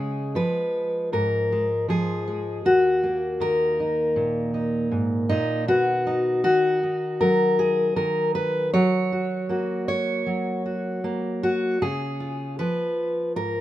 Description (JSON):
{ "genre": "folk, solo fingerstyle acoustic guitar", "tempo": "78 BPM", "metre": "4/4", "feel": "straight", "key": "unclear", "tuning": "A4 = 440 Hz", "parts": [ { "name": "fingerpicked steel-string acoustic guitar", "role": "solo", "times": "0.0-13.6 s", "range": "Eb2 to Db5", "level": "-21 LUFS", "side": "equal", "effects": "none" } ], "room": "light reverb, small room ambience", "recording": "rough home demo mix", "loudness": "-21 LUFS", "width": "side -14 dB against mid", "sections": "0.0-13.6 A section", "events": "none", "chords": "0.0 Db; 2.6 Ebm; 5.7 B; 8.7 Gb; 11.8 Db" }